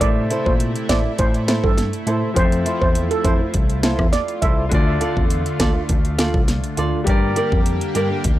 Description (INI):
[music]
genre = dancehall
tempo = 102 BPM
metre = 4/4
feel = straight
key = D minor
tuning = A4 = 440 Hz
[part]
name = steel pan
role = melody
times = 0.0-4.5 s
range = A4 to E5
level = -24 LUFS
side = right 3 dB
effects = tape echo
[part]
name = clear baby grand piano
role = accompaniment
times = 0.0-8.4 s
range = D3 to E5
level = -27 LUFS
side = left 2 dB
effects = none
[part]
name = lush unison pad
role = sustained chords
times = 0.0-8.4 s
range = C3 to G4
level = -28 LUFS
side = equal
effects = chorus, sidechain pumping
[part]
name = bell-like tine electric piano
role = bass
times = 0.0-8.4 s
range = C2 to Bb2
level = -22 LUFS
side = equal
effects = none
[part]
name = island pop drum kit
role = drums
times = 0.0-8.4 s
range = hi-hat, kick drum, rim click, snare drum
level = -19 LUFS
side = equal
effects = overdrive
[part]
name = flamenco guitar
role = arpeggios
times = 0.3-8.2 s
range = E4 to D5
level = -24 LUFS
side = right 2 dB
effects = none
[sound]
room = little or no reverb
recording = dry, gritty hardware recording, transformer saturation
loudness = -16 LUFS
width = side -14 dB against mid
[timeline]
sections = 0.0-8.4 A section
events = none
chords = 0.0 Am; 2.4 Fmaj7; 4.7 Dm; 7.1 Gm